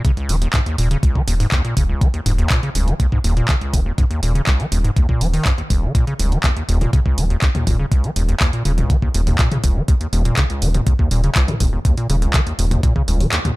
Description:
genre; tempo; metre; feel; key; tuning
acid house; 122 BPM; 4/4; straight; Eb minor; A4 = 440 Hz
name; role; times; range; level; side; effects
acid bass, square; riff; 0.0-13.5 s; Eb1 to Gb3; -21 LUFS; equal; overdrive, vintage 12-bit sampler grit, digital delay
electronic kick drum; drums; 0.0-13.1 s; none; -17 LUFS; equal; none
punchy analog drum machine; drums; 0.0-13.5 s; handclaps, hi-hat, toms; -23 LUFS; equal; none
round analog bass; bass; 0.3-13.3 s; Eb1; -19 LUFS; equal; tube saturation, sidechain pumping
room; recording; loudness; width
digital ambience; none; -15 LUFS; side -20 dB against mid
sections
0.0-13.6 A section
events
kick drops out 13.3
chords
none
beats
| 0.05 0.54 1.03 1.52 | 2.01 2.51 3.00 3.49 | 3.98 4.47 4.96 5.46 | 5.95 6.44 6.93 7.42 | 7.92 8.41 8.90 9.39 | 9.88 10.38 10.87 11.36 | 11.85 12.34 12.83 13.33

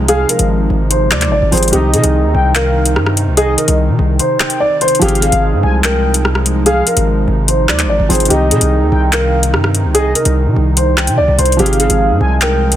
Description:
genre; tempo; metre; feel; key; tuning
hip hop, drill; 146 BPM; 4/4; half-time; unclear; A4 = 440 Hz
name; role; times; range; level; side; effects
dark concert grand piano; melody; 0.0-12.8 s; G4 to D5; -16 LUFS; equal; low-pass filter, tape echo
felt-muted upright piano; accompaniment; 0.0-12.8 s; Eb3 to Ab4; -22 LUFS; right 3 dB; low-pass filter
hollow soft pad; sustained chords; 0.0-12.8 s; C3 to Eb4; -20 LUFS; right 1 dB; chorus
distorted 808-style bass; bass; 0.0-12.8 s; Ab1 to C3; -14 LUFS; equal; distortion
warm velvety synth lead; second line; 0.1-12.8 s; D5 to Ab5; -21 LUFS; left 2 dB; chorus, tape echo
drill drum kit; drums; 0.1-12.8 s; handclaps, hi-hat, rim click; -16 LUFS; left 1 dB; overdrive
room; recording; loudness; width
digital ambience; dense, heavily limited modern master; -10 LUFS; side -12 dB against mid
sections
0.0-5.0 A section; 5.0-12.8 A section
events
kick muted 4.2-5.0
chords
0.0 Ab6; 1.7 Cm; 5.0 Ab6; 8.3 Cm; 11.6 Ab6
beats
| 0.09 0.50 0.91 1.32 | 1.73 2.14 2.55 2.96 | 3.37 3.78 4.19 4.61 | 5.02 5.43 5.84 6.25 | 6.66 7.07 7.48 7.89 | 8.30 8.71 9.13 9.54 | 9.95 10.36 10.77 11.18 | 11.59 12.00 12.41

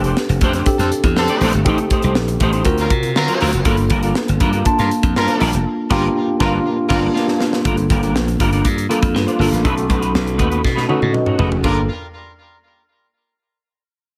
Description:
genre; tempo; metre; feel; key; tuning
polished 1980s jazz-funk pop; 120 BPM; 4/4; straight; unclear; A4 = 440 Hz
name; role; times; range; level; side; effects
tine electric piano; accompaniment; 0.0-11.9 s; A3 to A5; -22 LUFS; equal; overdrive, lush chorus
clean electric guitar; riff; 0.0-11.8 s; F#3 to D5; -25 LUFS; equal; ensemble chorus
slap bass; bass; 0.0-11.9 s; F1 to D3; -22 LUFS; equal; none
tight funk drum kit; drums; 0.0-11.8 s; crash cymbal, hi-hat, kick drum, snare drum, toms; -23 LUFS; equal; gated reverb
warm horn section; second line; 0.8-7.0, 11.6-11.8 s; D3 to Bb4; -26 LUFS; equal; digital delay
room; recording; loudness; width
small room ambience; none; -17 LUFS; mono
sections
0.0-7.6 A section; 7.6-11.6 B section; 11.6-13.6 C section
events
band accent 5.7-7.6; drum fill 7.2-7.6, 10.6-11.6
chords
0.0 F69; 1.7 Am7b5; 2.7 D7alt; 3.7 Gm7; 9.6 B7; 11.6 Gm7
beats
0.17 0.67 1.16 | 1.66 2.16 2.66 3.16 | 3.66 4.16 4.66 5.16 | 5.65 6.15 6.65 7.15 | 7.65 8.15 8.65 9.14 | 9.64 10.14 10.64 11.14 | 11.64

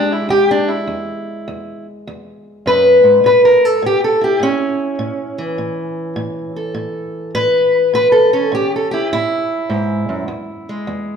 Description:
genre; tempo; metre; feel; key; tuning
acoustic country blues, solo or duo; 102 BPM; 4/4; swing 66% on 8ths; unclear; A4 = 440 Hz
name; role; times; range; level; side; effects
fingerpicked steel-string acoustic guitar; solo; 0.0-11.2 s; E2 to B4; -14 LUFS; equal; none
room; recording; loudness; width
wet recital hall reverb, RT60 1.5 s; recorded in a church or concert hall; -13 LUFS; side -6 dB against mid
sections
0.0-11.2 A section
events
none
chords
0.0 E; 3.2 A; 10.3 E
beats
0.30 | 0.89 1.47 2.06 2.65 | 3.23 3.82 4.41 4.99 | 5.58 6.17 6.75 7.34 | 7.93 8.52 9.10 9.69 | 10.28 10.87

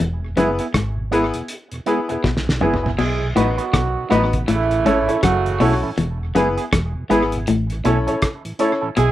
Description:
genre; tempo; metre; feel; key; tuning
roots reggae; 80 BPM; 4/4; swing 60% on 16ths; E major; A4 = 440 Hz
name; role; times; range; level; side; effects
electric guitar at the edge of break-up; riff; 0.0-9.1 s; E2 to B2; -21 LUFS; left 3 dB; none
vintage muted fingered electric bass; bass; 0.0-9.1 s; E1 to B1; -24 LUFS; equal; none
mellow tonewheel organ; accompaniment; 0.2-8.9 s; E2 to E4; -29 LUFS; right 1 dB; none
electric guitar with an envelope filter; accompaniment; 0.4-8.9 s; B3 to B4; -26 LUFS; right 7 dB; tape echo
clear baby grand piano; stabs; 0.4-8.8 s; B3 to C#5; -20 LUFS; left 2 dB; none
cloth-damped thuddy drum kit; drums; 0.4-9.1 s; crash cymbal, hi-hat, kick drum, rim click, snare drum, toms; -24 LUFS; equal; tape echo
mellow horn section; second line; 3.0-9.1 s; C#3 to G#4; -21 LUFS; right 5 dB; tape echo
room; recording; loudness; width
light reverb; rough home demo mix; -17 LUFS; side -14 dB against mid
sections
0.0-3.0 A section; 3.0-9.1 B section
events
drum fill 2.2-3.0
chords
0.0 E; 3.0 B; 4.5 A; 6.0 E; 7.5 A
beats
| 0.00 0.74 1.49 2.24 | 2.99 3.73 4.48 5.23 | 5.98 6.73 7.47 8.22 | 8.97

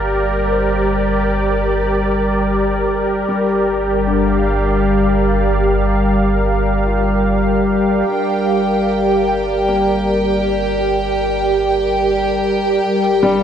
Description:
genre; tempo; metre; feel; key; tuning
ambient; 76 BPM; 3/4; straight; unclear; A4 = 440 Hz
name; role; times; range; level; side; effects
warm analog pad; sustained chords; 0.0-13.4 s; G3 to F5; -17 LUFS; equal; chorus
felt-muted upright piano; arpeggios; 0.0-13.4 s; D3 to G5; -27 LUFS; equal; diffuse ambient delay
warm sub bass; bass; 0.0-13.4 s; G1; -22 LUFS; equal; none
analog drone; drone; 0.0-13.4 s; G3 to G4; -20 LUFS; equal; chorus
warm studio violin section; texture; 8.1-13.4 s; G4 to G5; -21 LUFS; equal; none
room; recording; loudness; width
wet huge ambient reverb, RT60 7.9 s; dark, warm production; -14 LUFS; side -9 dB against mid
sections
0.0-8.1 A section; 8.1-13.4 B section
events
fade-in on sub bass 8.1-13.4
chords
0.0 Gm; 3.3 Bb/G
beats
0.12 | 0.91 1.70 2.48 | 3.27 4.07 4.86 | 5.65 6.45 7.26 | 8.07 8.87 9.67 | 10.46 11.25 12.04 | 12.82

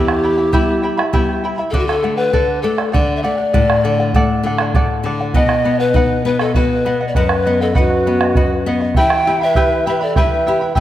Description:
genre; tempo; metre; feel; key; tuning
andean folk, Andean ensemble; 100 BPM; 3/4; straight; unclear; A4 = 437 Hz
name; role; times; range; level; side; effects
mellow hollow polished pan flute; melody; 0.0-10.8 s; F#4 to G5; -18 LUFS; left 1 dB; slapback echo
mellow large quena; second line; 0.0-1.4, 7.8-10.7 s; E4 to E5; -22 LUFS; right 3 dB; none
charango; accompaniment; 0.0-10.8 s; E4 to B5; -22 LUFS; right 1 dB; none
nylon-string guitar; accompaniment; 0.0-10.8 s; E2 to B4; -20 LUFS; left 3 dB; none
bombo; percussion; 0.1-10.8 s; none; -18 LUFS; right 2 dB; none
room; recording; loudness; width
moderate concert hall reverb, RT60 2.2 s; none; -13 LUFS; side -12 dB against mid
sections
0.0-1.7 A section; 1.7-10.8 A section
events
none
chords
0.0 Em; 1.7 D; 5.3 B; 9.0 Em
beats
0.53 1.14 | 1.74 2.34 2.94 | 3.54 4.14 4.74 | 5.34 5.95 6.55 | 7.15 7.75 8.35 | 8.96 9.56 10.16 | 10.76

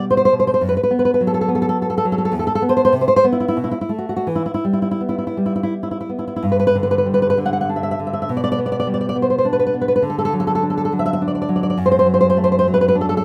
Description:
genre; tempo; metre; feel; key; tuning
romantic piece for solo classical guitar; 80-108 BPM; 3/4; rubato; E minor, G major from 6.4 s; A4 = 440 Hz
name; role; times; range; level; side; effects
nylon-string guitar; solo; 0.0-13.2 s; E2 to F#5; -18 LUFS; equal; none
room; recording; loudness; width
light reverb; none; -18 LUFS; mono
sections
0.0-6.4 A section; 6.4-13.2 B section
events
none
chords
0.0 Em (rootless); 0.6 B5/F#; 2.3 E5; 2.9 Cmaj7; 3.6 B7sus4; 4.3 Em; 6.4 G5; 8.3 G/B; 10.0 D; 11.8 D/F#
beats
0.03 | 0.62 1.20 1.77 | 2.33 2.93 3.57 | 4.28 5.01 5.74 | 6.44 7.08 7.68 | 8.28 8.87 9.45 | 10.03 10.62 11.21 | 11.78 12.36 12.94

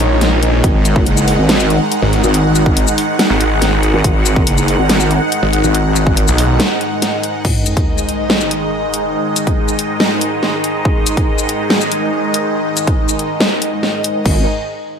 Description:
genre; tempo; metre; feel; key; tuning
heavy wobble dubstep; 141 BPM; 4/4; half-time; unclear; A4 = 440 Hz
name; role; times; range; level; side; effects
supersaw pad; sustained chords; 0.0-14.5 s; G#2 to F#5; -16 LUFS; equal; phaser, sidechain pumping
snarling distorted saw bass; bass; 0.0-6.6 s; G#1 to B1; -14 LUFS; equal; distortion, overdrive
dubstep drum kit; drums; 0.0-14.3 s; crash cymbal, hi-hat, shaker, snare drum; -17 LUFS; left 1 dB; none
wobble bass; bass; 0.6-6.3, 14.3-14.5 s; F#1 to G#1; -14 LUFS; equal; chorus, overdrive
electronic kick drum; drums; 0.6-14.3 s; none; -15 LUFS; equal; none
sub drop; sound effects; 7.4-9.1 s; none; -23 LUFS; equal; none
room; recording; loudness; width
moderate plate reverb, RT60 1.0 s; dreamy mix soaked in reverb; -12 LUFS; side -7 dB against mid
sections
0.0-7.4 A section; 7.4-14.3 B section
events
drop 0.0-7.4; break 6.6-7.4; impact 7.4-9.2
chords
0.0 G#5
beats
0.21 | 0.64 1.06 1.49 1.92 | 2.34 2.77 3.19 3.62 | 4.04 4.47 4.89 5.32 | 5.75 6.17 6.60 7.02 | 7.45 7.87 8.30 8.72 | 9.15 9.57 10.00 10.43 | 10.85 11.28 11.70 12.13 | 12.55 12.98 13.40 13.83 | 14.26

